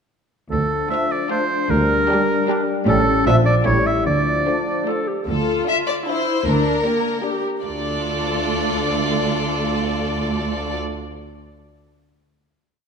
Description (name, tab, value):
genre	cinematic, playful, whimsical film cue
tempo	152 BPM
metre	3/4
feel	straight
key	D minor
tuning	A4 = 439 Hz
part	clear oboe	second line	0.5-4.9 s	A4 to E5	-21 LUFS	right 2 dB	none
part	concert flute	second line	0.5-4.9 s	A4 to E5	-25 LUFS	equal	none
part	dark French horn section	sustained chords	0.5-5.1 s	F3 to E4	-24 LUFS	left 5 dB	none
part	rich chamber double bass section	bass	0.5-10.8 s	A1 to D2	-24 LUFS	right 3 dB	none
part	warm studio cello section	bass	0.5-10.8 s	D2 to D3	-26 LUFS	right 2 dB	none
part	rich chamber violin section	melody	0.9-10.8 s	F4 to E5	-25 LUFS	left 2 dB	none
part	rich chamber violin section	second line	0.9-10.8 s	C#4 to A4	-29 LUFS	left 2 dB	none
part	warm clarinet	second line	0.9-5.3 s	C#4 to A4	-30 LUFS	left 2 dB	none
part	mellow bassoon	accompaniment	0.9-5.0 s	F3 to G3	-29 LUFS	equal	none
part	warm chamber viola section	accompaniment	0.9-10.8 s	F3 to G4	-26 LUFS	equal	none
room	wet scoring stage reverb, RT60 1.8 s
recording	none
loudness	-17 LUFS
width	side -6 dB against mid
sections	0.5-5.3 A section; 5.3-7.6 coda; 7.6-10.0 final chord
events	none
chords	0.5 Dm; 1.7 Gm/D; 2.9 A7; 3.3 Bb; 3.7 A7; 4.1 Dm; 6.5 Gm/D; 7.6 Dm